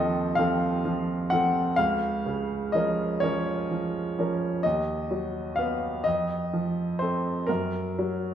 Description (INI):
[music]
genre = classical, romantic nocturne for solo piano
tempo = 42 BPM (dotted quarters)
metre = 12/8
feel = rubato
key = Bb minor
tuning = A4 = 439 Hz
[part]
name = clear grand piano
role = solo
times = 0.0-8.3 s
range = Db2 to Gb5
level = -24 LUFS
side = equal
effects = none
[sound]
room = wet recital hall reverb, RT60 1.7 s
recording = minimal, uncompressed stereo recording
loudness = -24 LUFS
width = side -9 dB against mid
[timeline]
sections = 0.0-8.3 A section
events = none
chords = 0.0 F7/Eb; 1.8 Bbm/Db; 4.6 B/D#; 6.1 F7; 7.5 Gb